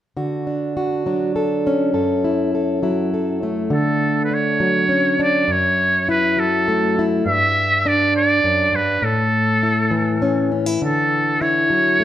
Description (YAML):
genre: acoustic folk duo or small band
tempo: 68 BPM (dotted quarters)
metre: 6/8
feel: straight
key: D major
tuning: A4 = 440 Hz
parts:
  - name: fingerpicked plugged-in steel-string acoustic guitar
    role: accompaniment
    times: 0.2-12.0 s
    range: F#2 to A4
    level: -18 LUFS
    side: equal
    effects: none
  - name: trumpet with metal mute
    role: melody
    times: 3.7-12.0 s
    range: A4 to E5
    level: -18 LUFS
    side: right 1 dB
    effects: none
room: wet large studio reverb, RT60 1.2 s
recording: none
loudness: -16 LUFS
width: side -11 dB against mid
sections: 0.2-3.7 A section; 3.7-12.0 B section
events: none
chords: 0.2 Dmaj7; 1.9 F#m7; 3.7 Dmaj7; 5.5 F#m7; 7.3 G5; 9.0 A; 10.8 Dadd9